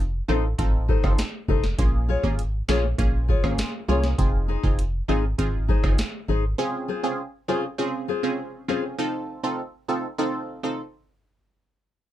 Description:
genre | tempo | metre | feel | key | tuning
dancehall | 100 BPM | 4/4 | straight | unclear | A4 = 440 Hz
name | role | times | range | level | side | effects
organ-like FM bass | bass | 0.0-6.5 s | F1 to C2 | -24 LUFS | equal | none
punchy chord stab | accompaniment | 0.3-10.8 s | Bb3 to A4 | -27 LUFS | right 2 dB | chorus, sidechain pumping
nylon-string guitar | arpeggios | 0.3-8.8 s | Eb4 to Db5 | -27 LUFS | left 7 dB | none
bongos | percussion | 0.3-4.0 s | none | -37 LUFS | right 4 dB | none
booming analog drum machine | drums | 0.6-6.1 s | hi-hat, kick drum, rim click, snare drum | -23 LUFS | equal | none
room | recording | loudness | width
little or no reverb | dark, warm production, faint mains hum | -22 LUFS | side -13 dB against mid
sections
0.0-11.4 A section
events
none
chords
0.0 F7; 1.8 Bbm7; 4.2 Fm7; 6.6 Dbmaj7; 9.0 F7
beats
0.59 1.19 | 1.79 2.39 2.99 3.59 | 4.19 4.79 5.39 5.99 | 6.59 7.19 7.79 8.39 | 8.99 9.59 10.19 10.79

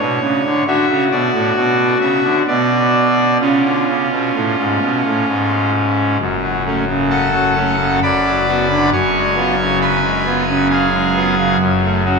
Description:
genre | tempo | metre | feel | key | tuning
classical, chorale-style piece for pipe organ | 67 BPM | 3/4 | straight | F# minor | A4 = 441 Hz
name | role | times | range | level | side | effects
pipe organ, trumpet | solo | 0.0-12.2 s | F#1 to D6 | -13 LUFS | equal | none
room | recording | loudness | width
wet huge ambient reverb, RT60 6.9 s | in a vast, echoing space | -13 LUFS | side -4 dB against mid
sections
0.0-6.2 A section; 6.2-12.2 B section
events
none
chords
0.0 Aadd9 (rootless); 0.7 D; 2.5 N.C.; 3.4 C#; 6.2 F#m; 8.0 Bm/F#; 8.9 C#7/F#; 11.6 F#m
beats
| 0.67 1.55 2.46 | 3.40 4.34 5.28 | 6.20 7.10 8.03 | 8.93 9.81 10.70 | 11.60

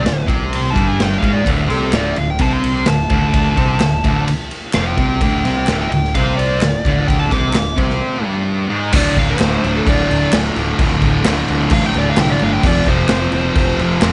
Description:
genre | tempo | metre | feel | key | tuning
garage rock duo or trio | 129 BPM | 4/4 | straight | D minor | A4 = 435 Hz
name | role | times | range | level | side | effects
fuzz lead guitar | melody | 0.0-13.8 s | A4 to D6 | -24 LUFS | equal | distortion
thick fuzz guitar | riff | 0.0-14.1 s | D2 to C4 | -19 LUFS | equal | distortion
growling fingered electric bass | bass | 0.0-14.1 s | D1 to C2 | -24 LUFS | equal | overdrive, tube saturation
raw garage drum kit | drums | 0.1-14.1 s | crash cymbal, kick drum, ride cymbal, snare drum | -21 LUFS | equal | none
group handclap | percussion | 1.9-14.1 s | none | -28 LUFS | equal | none
room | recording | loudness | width
little or no reverb | nothing above 11.0 kHz | -16 LUFS | mono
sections
0.0-8.9 A section; 8.9-14.1 B section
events
break 8.0-8.9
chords
0.0 D5; 12.6 F5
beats
0.05 0.52 0.99 | 1.46 1.93 2.40 2.87 | 3.33 3.80 4.27 4.74 | 5.21 5.67 6.14 6.61 | 7.08 7.54 8.01 8.47 | 8.94 9.40 9.86 10.33 | 10.79 11.25 11.71 12.17 | 12.63 13.10 13.56 14.02

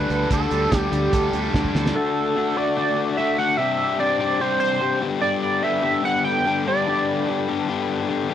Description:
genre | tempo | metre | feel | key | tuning
indie rock | 147 BPM | 4/4 | straight | G major | A4 = 439 Hz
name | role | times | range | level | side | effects
lead with added fifth | melody | 0.0-7.4 s | G4 to G5 | -22 LUFS | right 2 dB | chorus, slapback echo
crunchy overdriven guitar | riff | 0.0-2.0 s | D3 to A4 | -28 LUFS | right 9 dB | analog chorus
overdriven electric guitar | riff | 0.0-8.3 s | G2 to A4 | -23 LUFS | left 6 dB | none
growling fingered electric bass | bass | 0.0-1.9 s | D2 | -26 LUFS | right 1 dB | overdrive
cloth-damped thuddy drum kit | drums | 0.1-2.0 s | hi-hat, kick drum, snare drum | -23 LUFS | right 1 dB | none
brassy analog pad | sustained chords | 2.0-8.3 s | A4 to D6 | -34 LUFS | right 3 dB | chorus
room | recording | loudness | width
small room ambience | dry, close 1970s-style studio recording | -19 LUFS | side -10 dB against mid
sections
0.0-2.0 A section; 2.0-8.3 B section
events
drum fill 1.5-2.0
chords
0.0 Dsus4; 2.0 D; 3.6 Csus2; 5.0 Gadd9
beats
| 0.31 0.72 1.13 1.54 | 1.96 2.37 2.77 3.18 | 3.59 4.00 4.41 4.82 | 5.23 5.64 6.04 6.45 | 6.86 7.27 7.68 8.09

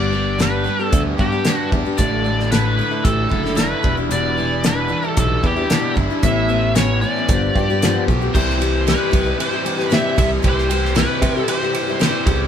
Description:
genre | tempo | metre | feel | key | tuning
folk rock and heartland rock | 114 BPM | 4/4 | straight | unclear | A4 = 437 Hz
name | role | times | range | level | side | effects
biting lead guitar | melody | 0.0-12.4 s | G4 to E5 | -22 LUFS | equal | overdrive
picked steel-string acoustic guitar | accompaniment | 0.0-12.5 s | E2 to G4 | -23 LUFS | left 6 dB | none
overdriven electric guitar | riff | 0.0-12.5 s | E2 to G4 | -24 LUFS | right 1 dB | none
picked electric bass | bass | 0.0-12.5 s | E1 to C3 | -22 LUFS | right 1 dB | none
damped 70s drum kit | drums | 0.4-12.4 s | crash cymbal, hi-hat, kick drum, ride cymbal, snare drum | -20 LUFS | equal | none
room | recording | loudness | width
moderate studio reverb, RT60 0.5 s | band playing live in one room | -15 LUFS | side -8 dB against mid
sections
0.0-8.3 A section; 8.3-12.5 B section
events
none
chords
0.0 G; 2.0 Asus4; 3.8 Em7; 6.2 Aadd9; 7.3 G7; 8.3 C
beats
0.39 0.92 1.46 | 1.99 2.52 3.05 3.58 | 4.11 4.64 5.17 5.70 | 6.23 6.76 7.28 7.81 | 8.33 8.86 9.38 9.91 | 10.43 10.96 11.48 12.01

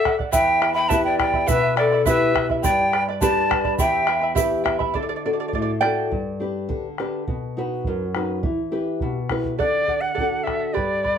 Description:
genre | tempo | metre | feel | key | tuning
andean folk, Andean ensemble | 104 BPM | 2/4 | straight | E minor | A4 = 440 Hz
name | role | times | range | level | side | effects
bright quena | melody | 0.0-4.3, 9.6-11.2 s | D5 to B5 | -21 LUFS | equal | none
breathy large pan pipes | second line | 0.0-4.3 s | A4 to G5 | -24 LUFS | left 5 dB | none
charango | accompaniment | 0.0-6.9, 9.6-11.2 s | E4 to B5 | -25 LUFS | right 6 dB | none
bombo | percussion | 0.1-11.2 s | none | -27 LUFS | equal | none
nylon-string guitar | accompaniment | 0.3-11.2 s | E2 to B4 | -25 LUFS | left 2 dB | none
egg shaker | percussion | 0.3-4.5 s | none | -32 LUFS | left 6 dB | none
room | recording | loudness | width
moderate studio reverb, RT60 0.8 s | none | -19 LUFS | side -8 dB against mid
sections
0.0-4.9 A section; 4.9-9.6 B section; 9.6-11.2 C section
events
charango solo 4.9-9.6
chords
0.3 Em; 2.6 G; 3.8 Em; 4.9 D; 6.1 G; 7.3 B; 8.4 Em; 9.6 D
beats
| 0.34 0.91 | 1.49 2.06 | 2.64 3.22 | 3.79 4.37 | 4.95 5.53 | 6.11 6.69 | 7.27 7.85 | 8.43 9.01 | 9.60 10.18 | 10.76

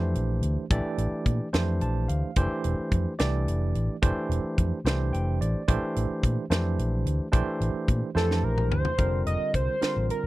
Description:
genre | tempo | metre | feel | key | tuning
electric jazz fusion | 72 BPM (dotted quarters) | 6/8 | straight | unclear | A4 = 439 Hz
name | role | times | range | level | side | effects
barky tine electric piano | accompaniment | 0.0-10.3 s | D3 to A5 | -30 LUFS | right 2 dB | medium stereo tremolo
fingered electric bass | bass | 0.0-10.3 s | E1 to Bb2 | -26 LUFS | equal | none
tight funk drum kit | drums | 0.2-10.2 s | hi-hat, kick drum, snare drum, toms | -26 LUFS | equal | none
pulse-width lead | melody | 8.2-10.3 s | A4 to Eb5 | -28 LUFS | right 1 dB | chorus, slapback echo
room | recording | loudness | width
little or no reverb | dry, close 1970s-style studio recording | -24 LUFS | side -18 dB against mid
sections
0.0-9.0 A section; 9.0-10.3 B section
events
tine electric piano fill 1.5-2.4, 4.8-5.7; drum fill 8.2-9.0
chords
0.0 Bbmaj9; 2.4 Fmaj9; 5.7 Bbmaj9; 9.0 Fsus4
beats
| 0.71 1.54 | 2.37 3.19 | 4.02 4.85 | 5.68 6.50 | 7.33 8.16 | 8.99 9.82

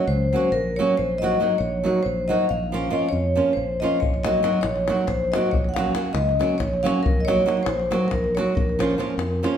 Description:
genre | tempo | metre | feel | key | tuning
balkan folk, Balkan wedding band | 277 BPM (eighths) | 7/8 | straight | unclear | A4 = 441 Hz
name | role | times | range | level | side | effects
vibraphone with medium mallets | melody | 0.0-9.6 s | Bb4 to Gb5 | -23 LUFS | left 1 dB | none
flamenco guitar | accompaniment | 0.0-9.6 s | F3 to Gb4 | -25 LUFS | right 2 dB | none
fingered electric bass | bass | 0.1-9.4 s | Bb1 to F2 | -27 LUFS | equal | none
davul | percussion | 4.0-9.6 s | none | -27 LUFS | left 2 dB | none
room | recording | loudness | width
wet large studio reverb, RT60 1.3 s | band playing live in one room | -20 LUFS | side -9 dB against mid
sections
0.0-9.6 A section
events
none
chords
0.0 Gb; 1.0 Ebm/Bb; 2.5 Bbm; 4.0 Ebm/Bb; 5.5 Gb/Bb; 7.1 Ebm/Bb; 8.6 Bbm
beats
0.12 0.33 0.55 0.77 | 0.99 1.20 1.42 1.64 1.86 2.07 2.29 | 2.51 2.73 2.94 3.16 3.38 3.59 3.81 | 4.03 4.24 4.46 4.68 4.89 5.11 5.33 | 5.54 5.76 5.97 6.19 6.41 6.62 6.84 | 7.06 7.27 7.49 7.71 7.92 8.14 8.35 | 8.57 8.79 9.00 9.22 9.44

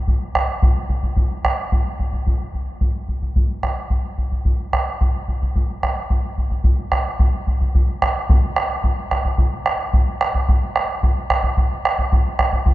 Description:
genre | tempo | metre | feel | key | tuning
andean folk | 110 BPM | 2/4 | straight | none | none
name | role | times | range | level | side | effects
bombo | percussion | 0.1-12.7 s | none | -17 LUFS | equal | none
room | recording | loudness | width
moderate cathedral reverb, RT60 5.0 s | nothing above 7.5 kHz | -17 LUFS | side -16 dB against mid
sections
0.0-8.3 A section; 8.3-12.7 B section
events
none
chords
none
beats
0.07 | 0.62 1.17 | 1.71 2.26 | 2.81 3.36 | 3.91 4.46 | 5.00 5.55 | 6.10 6.65 | 7.20 7.75 | 8.30 8.85 | 9.40 9.94 | 10.49 11.04 | 11.58 12.13 | 12.67

